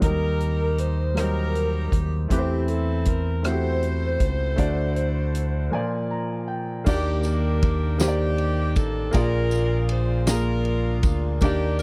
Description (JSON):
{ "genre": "slow gospel", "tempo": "53 BPM (dotted quarters)", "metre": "6/8", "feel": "straight", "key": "unclear", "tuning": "A4 = 438 Hz", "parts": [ { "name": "bright saxophone section", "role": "melody", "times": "0.0-11.8 s", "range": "Bb3 to C5", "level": "-33 LUFS", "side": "equal", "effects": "none" }, { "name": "clear concert grand piano", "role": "accompaniment", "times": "0.0-11.8 s", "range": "Bb2 to Bb5", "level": "-29 LUFS", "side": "equal", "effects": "none" }, { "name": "fingered electric bass", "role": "bass", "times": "0.0-11.8 s", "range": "A1 to E2", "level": "-27 LUFS", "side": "equal", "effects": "none" }, { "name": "natural country drum kit", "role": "drums", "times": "0.0-11.8 s", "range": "crash cymbal, hi-hat, kick drum, ride cymbal, rim click, snare drum", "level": "-27 LUFS", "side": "equal", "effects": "none" }, { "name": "breathy alto saxophone", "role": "melody", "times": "0.1-6.1 s", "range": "G4 to C5", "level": "-35 LUFS", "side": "equal", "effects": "none" }, { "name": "tambourine", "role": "percussion", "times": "6.9-11.8 s", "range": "none", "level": "-41 LUFS", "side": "equal", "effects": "none" } ], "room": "little or no reverb", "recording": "dry, close 1970s-style studio recording", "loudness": "-23 LUFS", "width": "mono", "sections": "0.0-6.9 A section; 6.9-11.8 B section", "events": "break 5.7-6.9; grand piano fill 5.7-6.9", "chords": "0.0 Eb; 2.3 Am/E; 4.6 D; 5.7 Bb7; 6.9 Ebmaj7; 9.1 Bb7" }